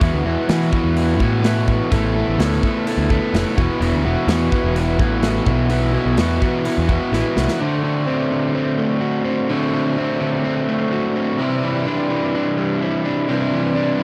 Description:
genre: indie rock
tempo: 127 BPM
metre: 4/4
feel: straight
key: unclear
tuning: A4 = 440 Hz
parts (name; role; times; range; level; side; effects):
- overdriven electric guitar; riff; 0.0-14.0 s; B2 to A4; -23 LUFS; equal; none
- overdriven electric guitar; riff; 0.0-14.0 s; B2 to A4; -25 LUFS; equal; subtle chorus
- fuzz picked electric bass; bass; 0.0-7.5 s; E1 to E3; -22 LUFS; equal; overdrive
- big rock drum kit; drums; 0.0-7.6 s; hi-hat, kick drum, snare drum; -24 LUFS; equal; none
room: small room reverb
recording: dry, close 1970s-style studio recording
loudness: -19 LUFS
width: mono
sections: 0.0-7.6 A section; 7.6-14.0 B section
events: drum fill 7.1-7.6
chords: 0.0 Esus2; 1.9 Asus2; 3.6 Esus2; 5.5 Bsus4; 7.6 D7; 11.4 Cadd9

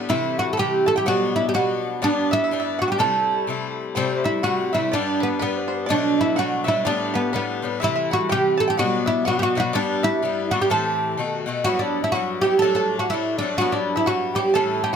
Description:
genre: celtic folk, Celtic polka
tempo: 125 BPM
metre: 2/4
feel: swing 60% on 8ths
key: A dorian, E dorian from 11.7 s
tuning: A4 = 436 Hz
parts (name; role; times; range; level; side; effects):
- oud; melody; 0.0-15.0 s; B3 to A4; -21 LUFS; right 2 dB; none
- bluegrass banjo; second line; 0.0-15.0 s; B4 to A5; -32 LUFS; right 3 dB; none
- Irish bouzouki; accompaniment; 0.0-15.0 s; G2 to G4; -26 LUFS; left 7 dB; none
- mellow wooden flute; second line; 0.1-15.0 s; B4 to A5; -31 LUFS; left 6 dB; none
room: light reverb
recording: close, detailed microphones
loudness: -19 LUFS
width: side -7 dB against mid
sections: 0.0-4.0 A section; 4.0-11.7 A section; 11.7-15.0 B section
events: none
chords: 0.1 Am; 1.1 Bm; 2.0 G; 3.0 Am7; 4.9 G; 5.9 Bm7; 6.8 Gadd9; 7.8 Am; 8.8 Bm; 9.7 G; 10.7 Am7; 11.2 B7; 11.7 Emadd9; 12.6 D; 13.6 Emadd9

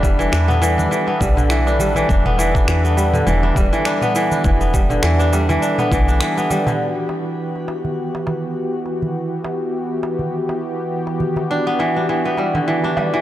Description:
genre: organic downtempo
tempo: 102 BPM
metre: 4/4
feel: swing 56% on 16ths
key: E minor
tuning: A4 = 440 Hz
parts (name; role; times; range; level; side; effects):
- warm analog pad; sustained chords; 0.0-13.2 s; E3 to B4; -23 LUFS; equal; chorus, tremolo, sidechain pumping, shimmer reverb
- kora; arpeggios; 0.0-13.2 s; D3 to D4; -18 LUFS; equal; analog delay, shimmer reverb
- woody FM bass; bass; 0.0-6.2 s; D1 to E2; -18 LUFS; equal; tube saturation, sidechain pumping
- afro-pop drum kit; drums; 0.0-6.8 s; cabasa, finger snaps, toms; -26 LUFS; equal; studio reverb
- electronic kick drum; drums; 0.0-6.0 s; none; -19 LUFS; equal; overdrive, studio reverb
- darbuka; percussion; 0.0-13.1 s; none; -27 LUFS; right 1 dB; none
room: light reverb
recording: dry, gritty hardware recording, transformer saturation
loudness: -16 LUFS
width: side -13 dB against mid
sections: 0.0-6.8 A section; 6.8-13.2 B section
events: none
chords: 0.0 G; 6.8 Em7

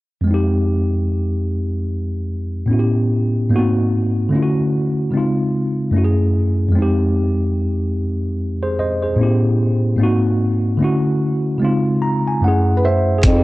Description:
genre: lo-fi hip hop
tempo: 74 BPM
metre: 4/4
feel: swing 58% on 16ths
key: unclear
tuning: A4 = 440 Hz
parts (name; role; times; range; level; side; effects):
- mellow tine electric piano; accompaniment; 0.2-13.4 s; F2 to Bb5; -16 LUFS; equal; medium stereo tremolo, cassette tape, low-pass filter
- felt-muted upright piano; melody; 12.8-13.4 s; B4 to C5; -20 LUFS; right 2 dB; low-pass filter
- mellow bass clarinet; bass; 13.2-13.4 s; F2; -15 LUFS; equal; none
- lo-fi sampler-style drum kit; drums; 13.2-13.4 s; hi-hat, kick drum; -13 LUFS; equal; none
room: light reverb, small room ambience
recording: none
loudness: -16 LUFS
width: side -19 dB against mid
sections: 0.3-13.2 A section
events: tine electric piano fill 11.6-13.2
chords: 0.3 Fm9; 2.7 A9; 3.5 Ab7; 4.3 Dmaj7; 5.1 Dbmaj7; 5.9 Gbm9; 6.7 Fm9; 9.2 A9; 10.0 Ab7; 10.8 Dmaj7; 11.6 Dbmaj7; 12.4 Gbm9

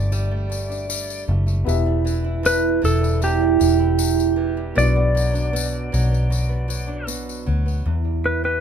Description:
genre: acoustic pop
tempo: 78 BPM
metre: 4/4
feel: straight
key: E minor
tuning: A4 = 440 Hz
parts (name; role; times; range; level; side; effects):
- clean lap steel guitar; melody; 0.0-8.6 s; G4 to D5; -24 LUFS; left 2 dB; none
- dark upright piano; accompaniment; 0.0-7.9 s; A3 to E5; -29 LUFS; left 5 dB; none
- flamenco guitar; accompaniment; 0.0-8.6 s; E2 to G4; -24 LUFS; right 9 dB; none
- vintage muted fingered electric bass; bass; 0.0-8.6 s; E1 to E2; -21 LUFS; equal; none
- tambourine; percussion; 0.1-7.9 s; none; -31 LUFS; left 8 dB; none
room: little or no reverb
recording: minimal, uncompressed stereo recording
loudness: -18 LUFS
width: side -8 dB against mid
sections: 0.0-7.9 A section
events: none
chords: 0.0 Gsus2; 1.7 Em; 4.8 Bm; 7.9 Em

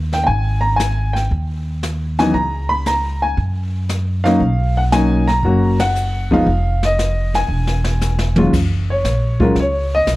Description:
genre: jazz piano trio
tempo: 116 BPM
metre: 4/4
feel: swing 69% on 8ths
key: unclear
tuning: A4 = 440 Hz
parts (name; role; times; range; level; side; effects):
- upright bass; bass; 0.0-10.2 s; E1 to Gb2; -18 LUFS; equal; none
- warm upright piano; melody; 0.1-10.1 s; Eb2 to Cb6; -17 LUFS; left 1 dB; none
- jazz brush drum kit; drums; 0.1-10.2 s; brushed snare drum, crash cymbal, hi-hat, kick drum, ride cymbal, snare drum, toms; -24 LUFS; equal; none
room: light reverb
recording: none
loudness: -15 LUFS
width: side -18 dB against mid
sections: 0.0-8.5 A section; 8.5-10.2 B section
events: band accent 5.7; drum fill 7.5-8.5; upright piano solo 8.5-10.2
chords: 0.3 Ab5; 2.3 Bbm/Db; 3.4 N.C.; 4.4 Bmaj9; 6.5 F7(no3); 7.5 E; 8.5 Gb

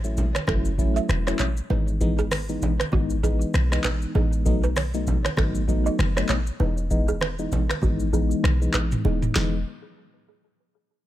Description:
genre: afrobeats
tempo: 98 BPM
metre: 4/4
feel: swing 58% on 16ths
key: E major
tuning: A4 = 440 Hz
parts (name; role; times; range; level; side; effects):
- FM electric piano with tremolo; accompaniment; 0.0-9.6 s; E3 to E4; -28 LUFS; left 2 dB; phaser, low-pass filter
- short 808-style bass; bass; 0.0-9.6 s; D#1 to B1; -24 LUFS; equal; none
- booming analog drum machine; drums; 0.0-9.5 s; finger snaps, handclaps, hi-hat, kick drum, rim click, shaker, snare drum, toms; -24 LUFS; equal; vintage 12-bit sampler grit
- congas; percussion; 0.2-9.6 s; none; -33 LUFS; right 2 dB; none
- balafon; riff; 0.3-9.4 s; F#4 to E5; -32 LUFS; right 7 dB; low-pass filter, ping-pong delay
room: digital ambience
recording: none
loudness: -21 LUFS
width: side -14 dB against mid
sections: 0.0-9.4 A section; 9.4-11.1 B section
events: filter sweep 0.0-9.4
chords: 0.0 A6; 1.7 Emaj7/G#; 4.5 B7; 6.6 Emaj7

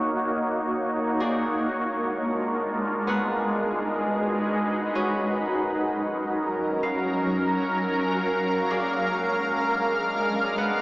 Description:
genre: hip hop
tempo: free time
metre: none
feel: none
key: Eb minor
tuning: A4 = 440 Hz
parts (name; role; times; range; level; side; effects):
- shimmering ambient pad; sustained chords; 0.0-10.8 s; Gb3 to F5; -23 LUFS; equal; chorus, built-in reverb, phaser, low-pass filter
- kora; texture; 0.0-10.8 s; Bb3 to Gb5; -33 LUFS; equal; none
room: wet huge ambient reverb, RT60 4.5 s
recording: dreamy mix soaked in reverb, small speaker sound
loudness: -23 LUFS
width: side -21 dB against mid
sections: 0.0-10.8 A section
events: filter sweep on ambient pad 0.0-10.8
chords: 0.0 Ebm7; 1.2 Bb7; 3.1 Abm7; 5.0 Ebm7; 8.7 Bb7

